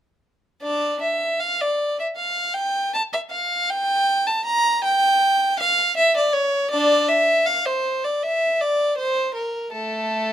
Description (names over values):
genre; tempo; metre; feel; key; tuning
classical, baroque-style suite movement for unaccompanied violin; 79 BPM; 4/4; rubato; D minor; A4 = 441 Hz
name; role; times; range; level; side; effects
warm violin; solo; 0.6-10.3 s; A3 to Bb5; -18 LUFS; equal; none
room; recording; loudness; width
little or no reverb; close, detailed microphones; -18 LUFS; side -10 dB against mid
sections
0.6-10.3 A section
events
none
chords
none